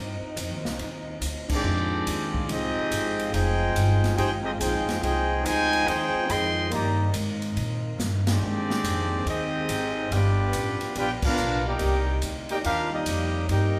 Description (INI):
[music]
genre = jazz, big band swing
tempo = 142 BPM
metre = 4/4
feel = swing 65% on 8ths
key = C minor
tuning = A4 = 440 Hz
[part]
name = mellow trombone section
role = sustained chords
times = 0.0-13.8 s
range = Bb2 to F4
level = -39 LUFS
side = equal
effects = none
[part]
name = upright bass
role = bass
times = 0.0-13.8 s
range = F1 to Bb2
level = -30 LUFS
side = equal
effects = none
[part]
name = swinging big-band drum kit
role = drums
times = 0.4-13.6 s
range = crash cymbal, hi-hat, kick drum, ride cymbal, snare drum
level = -35 LUFS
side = equal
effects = none
[part]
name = clear trumpet section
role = melody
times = 1.5-13.8 s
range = Bb3 to C6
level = -29 LUFS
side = equal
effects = none
[part]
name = warm trombone section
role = second line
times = 1.5-13.8 s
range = C3 to Ab4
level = -34 LUFS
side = equal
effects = none
[sound]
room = wet large studio reverb, RT60 1.3 s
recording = band playing live in one room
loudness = -26 LUFS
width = mono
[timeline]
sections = 0.0-13.8 A section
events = band accent 1.4, 8.2, 11.2; drum fill 8.0-8.4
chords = 0.0 Cm9; 1.7 Fm9; 6.7 Cm9; 8.4 Abmaj7; 10.1 G7#9; 11.8 Cm9